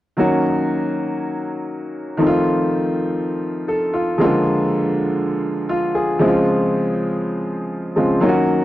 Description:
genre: disco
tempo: 120 BPM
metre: 4/4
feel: straight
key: Eb dorian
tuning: A4 = 440 Hz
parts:
  - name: clear baby grand piano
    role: solo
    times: 0.2-8.6 s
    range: Db3 to A4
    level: -17 LUFS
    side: equal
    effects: none
room: light reverb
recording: dry, close 1970s-style studio recording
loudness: -17 LUFS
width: side -15 dB against mid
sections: 0.2-8.2 A section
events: none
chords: 0.2 Ebm7; 2.2 F7; 4.2 Bb7; 6.2 Dbmaj7

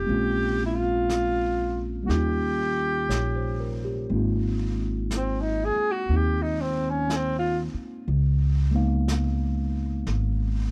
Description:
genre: jazz ballad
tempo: 60 BPM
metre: 4/4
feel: swing 66% on 8ths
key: Ab major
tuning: A4 = 443 Hz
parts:
  - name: breathy alto saxophone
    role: melody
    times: 0.0-7.6 s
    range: C4 to Ab4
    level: -29 LUFS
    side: equal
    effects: none
  - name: tine electric piano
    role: accompaniment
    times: 0.0-10.7 s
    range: G3 to F5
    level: -32 LUFS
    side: equal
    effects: overdrive
  - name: upright bass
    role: bass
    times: 0.0-10.7 s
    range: Ab1 to Eb2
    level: -28 LUFS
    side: equal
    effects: none
  - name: vintage brush drum kit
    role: drums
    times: 0.1-10.7 s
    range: brushed snare drum, hi-hat, snare drum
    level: -41 LUFS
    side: equal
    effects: none
room: small room reverb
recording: dry, close 1970s-style studio recording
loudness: -26 LUFS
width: mono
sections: 0.0-4.1 A section; 4.1-10.7 B section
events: alto saxophone solo 4.1-10.7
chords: 0.1 Bbm7; 2.1 Eb9; 4.1 Ab69; 8.1 Db13

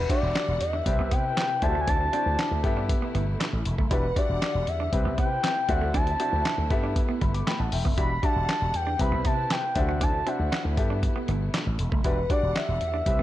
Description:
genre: early-eighties boogie funk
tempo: 118 BPM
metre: 4/4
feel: straight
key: G major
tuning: A4 = 439 Hz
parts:
  - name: expressive synth lead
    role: melody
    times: 0.0-13.2 s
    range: B4 to B5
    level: -28 LUFS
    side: equal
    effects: chorus, slapback echo
  - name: dark studio string section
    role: sustained chords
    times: 0.0-13.2 s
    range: B2 to F#5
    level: -38 LUFS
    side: left 2 dB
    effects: none
  - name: slap bass with an envelope filter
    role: bass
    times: 0.0-13.2 s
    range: E1 to C3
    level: -28 LUFS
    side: equal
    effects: none
  - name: warm grand piano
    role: accompaniment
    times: 0.1-13.2 s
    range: B3 to D6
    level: -33 LUFS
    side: left 3 dB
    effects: none
  - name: clean electric guitar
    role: riff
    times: 0.1-13.2 s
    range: G3 to E4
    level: -36 LUFS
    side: right 7 dB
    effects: lush chorus
  - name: lo-fi sampler-style drum kit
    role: drums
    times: 0.1-13.2 s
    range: handclaps, hi-hat, kick drum, snare drum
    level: -28 LUFS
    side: equal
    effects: none
room: light reverb, digital ambience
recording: dark, warm production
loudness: -23 LUFS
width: side -14 dB against mid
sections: 0.0-13.2 A section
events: grand piano fill 7.0-8.0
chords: 0.0 Em9; 0.9 Cmaj7; 1.6 D9; 2.6 G69; 3.9 Em9; 4.9 Cmaj7; 5.7 D9; 6.7 G69; 8.0 Em9; 9.0 Cmaj7; 9.8 D9; 10.8 G69; 12.0 Em9

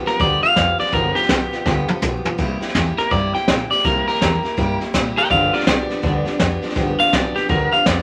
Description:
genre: rockabilly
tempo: 164 BPM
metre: 4/4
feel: swing 63% on 8ths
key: G mixolydian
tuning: A4 = 440 Hz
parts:
  - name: picked steel-string acoustic guitar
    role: accompaniment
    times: 0.0-8.0 s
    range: G2 to G4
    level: -27 LUFS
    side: equal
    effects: none
  - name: upright bass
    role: bass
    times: 0.0-8.0 s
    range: G1 to Bb2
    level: -27 LUFS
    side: equal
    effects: none
  - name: electric guitar at the edge of break-up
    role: melody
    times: 0.1-8.0 s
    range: F4 to G5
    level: -21 LUFS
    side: equal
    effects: none
  - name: jazz brush drum kit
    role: drums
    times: 0.1-8.0 s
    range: hi-hat, kick drum, snare drum, toms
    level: -23 LUFS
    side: equal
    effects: none
room: moderate studio reverb, RT60 0.6 s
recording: vinyl crackle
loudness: -18 LUFS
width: mono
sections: 0.0-8.0 A section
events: clean electric guitar solo 0.0-8.0; drum fill 1.7-2.4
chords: 0.0 G7; 2.4 C7; 5.3 G7

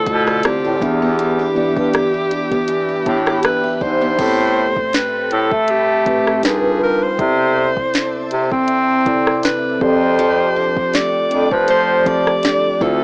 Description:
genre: contemporary R&B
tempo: 80 BPM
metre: 4/4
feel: swing 54% on 16ths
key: A minor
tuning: A4 = 439 Hz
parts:
  - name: bright alto saxophone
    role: melody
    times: 0.0-13.0 s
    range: G4 to D5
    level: -21 LUFS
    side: equal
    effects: none
  - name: mellow tine electric piano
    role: accompaniment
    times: 0.0-13.0 s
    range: A2 to B5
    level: -25 LUFS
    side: equal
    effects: analog chorus
  - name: glassy FM pad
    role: sustained chords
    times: 0.0-13.0 s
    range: B3 to D#6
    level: -31 LUFS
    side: equal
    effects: none
  - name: picked steel-string acoustic guitar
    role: arpeggios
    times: 0.0-4.8, 10.2-13.0 s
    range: D3 to G4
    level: -27 LUFS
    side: equal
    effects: none
  - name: clear bass clarinet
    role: bass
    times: 0.1-13.0 s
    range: D2 to C4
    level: -20 LUFS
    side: equal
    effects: none
  - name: smooth R&B drum kit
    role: drums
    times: 0.1-13.0 s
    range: crash cymbal, hi-hat, kick drum, rim click, snare drum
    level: -23 LUFS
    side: equal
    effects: none
room: light reverb, small room ambience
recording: dry, gritty hardware recording, small speaker sound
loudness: -16 LUFS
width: mono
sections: 0.0-4.2 A section; 4.2-13.0 B section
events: tine electric piano fill 2.7-4.2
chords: 0.0 Dm7; 0.8 Em7; 4.2 Am9; 6.4 G7alt; 7.2 C69; 9.8 F69

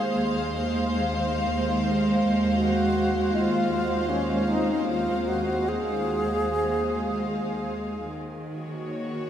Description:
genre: ambient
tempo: 75 BPM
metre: 4/4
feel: straight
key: unclear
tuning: A4 = 442 Hz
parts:
  - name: wooden-headed alto flute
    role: melody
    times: 0.0-7.7 s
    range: Db4 to Ab4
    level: -29 LUFS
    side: equal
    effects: shimmer reverb, tape echo
  - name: dark studio string section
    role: sustained chords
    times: 0.0-9.3 s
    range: Eb2 to F5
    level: -25 LUFS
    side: right 1 dB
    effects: shimmer reverb
  - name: small celesta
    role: arpeggios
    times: 0.0-8.2 s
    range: C4 to Ab6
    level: -42 LUFS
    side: left 5 dB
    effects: none
  - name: drifting glass-harmonics texture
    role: texture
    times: 0.0-8.2 s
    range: C6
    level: -43 LUFS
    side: right 1 dB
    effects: none
room: wet huge ambient reverb, RT60 8.0 s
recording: none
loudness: -23 LUFS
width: side -10 dB against mid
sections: 0.0-8.2 A section; 8.2-9.3 B section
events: none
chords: 0.0 Fm/Eb; 8.2 Ebm7

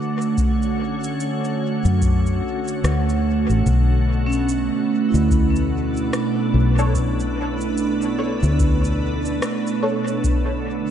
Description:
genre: ambient dub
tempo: 73 BPM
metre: 4/4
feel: swing 60% on 16ths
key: B minor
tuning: A4 = 438 Hz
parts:
  - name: soft additive organ-like pad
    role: sustained chords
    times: 0.0-10.9 s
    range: B2 to B4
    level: -22 LUFS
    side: right 2 dB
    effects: ensemble chorus, built-in reverb
  - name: vibraphone with medium hard mallets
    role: arpeggios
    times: 0.0-10.3 s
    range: C#4 to D6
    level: -29 LUFS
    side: equal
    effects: ping-pong delay
  - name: electronic cabasa and rim click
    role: drums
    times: 0.2-10.4 s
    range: none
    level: -33 LUFS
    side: equal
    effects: overdrive, dub echo
  - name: electronic kick drum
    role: drums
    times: 0.4-10.4 s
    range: none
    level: -22 LUFS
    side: left 1 dB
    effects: none
  - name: fingered electric bass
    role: bass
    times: 1.8-9.4 s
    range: A1 to F#2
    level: -20 LUFS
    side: left 1 dB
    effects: none
  - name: filtered dub chord stab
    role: stabs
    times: 6.8-10.0 s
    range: D4 to C#5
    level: -29 LUFS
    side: left 1 dB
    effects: phaser, ensemble chorus, dub echo
room: moderate plate reverb, RT60 3.2 s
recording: dreamy mix soaked in reverb, nothing above 11.0 kHz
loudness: -18 LUFS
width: side -9 dB against mid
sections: 0.0-10.9 A section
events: none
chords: 0.0 Dmaj7; 3.7 Bm7; 10.2 D5

